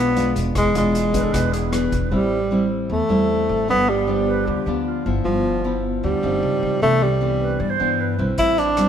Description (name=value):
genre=bossa nova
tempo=153 BPM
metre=4/4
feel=straight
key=A minor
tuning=A4 = 440 Hz
part: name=breathy tenor saxophone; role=melody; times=0.0-8.9 s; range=F3 to E4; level=-20 LUFS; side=right 1 dB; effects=none
part: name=nylon-string guitar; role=accompaniment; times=0.0-8.9 s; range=G2 to G#4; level=-23 LUFS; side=left 2 dB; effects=none
part: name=upright bass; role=bass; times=0.0-8.9 s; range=E1 to G2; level=-25 LUFS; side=equal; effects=none
part: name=vintage drum kit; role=drums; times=0.2-2.0, 8.4-8.9 s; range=hi-hat, kick drum, rim click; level=-28 LUFS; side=equal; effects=none
part: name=breathy mellow silver concert flute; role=second line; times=1.1-8.3 s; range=F4 to D5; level=-27 LUFS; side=right 6 dB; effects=none
room=moderate echo chamber reverb, RT60 1.6 s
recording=heard from further back in the room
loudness=-18 LUFS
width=side -8 dB against mid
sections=0.0-2.1 A section; 2.1-8.9 B section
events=none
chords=0.0 E7b9; 1.3 E7; 2.1 Am7; 3.7 G7; 5.3 G6; 6.4 C#maj9; 6.8 Cmaj9; 8.4 Am7